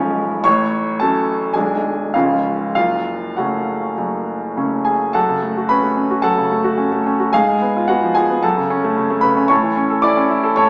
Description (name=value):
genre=classical, virtuoso piano study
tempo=96-114 BPM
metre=4/4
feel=rubato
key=F# minor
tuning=A4 = 440 Hz
part: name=clear grand piano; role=solo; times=0.0-10.7 s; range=B0 to D6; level=-17 LUFS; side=equal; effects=none
room=wet recital hall reverb, RT60 1.3 s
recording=small speaker sound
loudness=-17 LUFS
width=mono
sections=0.0-5.2 A section; 5.2-10.7 B section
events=none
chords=0.4 F#m/A; 1.5 G#m7b5/B; 2.1 C#; 2.7 F#m; 7.3 Fdim/Ab; 8.4 F#m; 9.5 A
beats=| 0.44 0.99 1.55 2.13 | 2.75 3.37 3.97 4.56 | 5.15 5.71 6.25 6.79 | 7.34 7.89 8.43 8.96 | 9.50 10.03 10.57